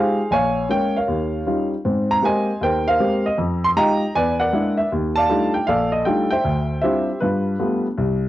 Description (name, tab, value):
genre	solo jazz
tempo	157 BPM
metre	4/4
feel	swing 66% on 8ths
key	unclear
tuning	A4 = 440 Hz
part	warm baby grand piano	solo	0.0-8.3 s	Bb1 to C6	-18 LUFS	equal	none
room	light reverb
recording	home recording on cassette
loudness	-18 LUFS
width	side -14 dB against mid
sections	0.0-8.0 A section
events	none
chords	0.3 Bbm7; 1.1 Eb9; 1.8 Abmaj9; 3.4 Fm9; 4.1 E7#11; 4.9 Ebmaj9#11; 6.4 Dm11; 7.2 G9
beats	| 0.32 0.70 1.08 1.47 | 1.85 2.23 2.62 3.00 | 3.38 3.76 4.15 4.53 | 4.91 5.29 5.67 6.06 | 6.44 6.82 7.20 7.59 | 7.97